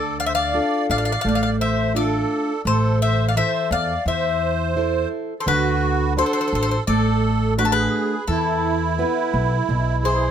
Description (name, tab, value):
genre	greek folk, Greek bouzouki band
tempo	85 BPM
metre	4/4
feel	straight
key	unclear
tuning	A4 = 440 Hz
part	Greek bouzouki	melody	0.0-10.3 s	A4 to F5	-23 LUFS	left 5 dB	none
part	musette accordion	second line	0.0-10.3 s	E4 to D5	-25 LUFS	right 6 dB	none
part	fingerpicked plugged-in steel-string acoustic guitar	accompaniment	0.0-10.3 s	B2 to C5	-24 LUFS	right 1 dB	none
part	upright bass	bass	0.0-10.3 s	A1 to E2	-23 LUFS	equal	none
room	light reverb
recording	close, detailed microphones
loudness	-18 LUFS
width	side -9 dB against mid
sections	0.0-10.3 A section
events	none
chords	0.0 Dm; 2.7 Am; 5.5 D; 8.3 E5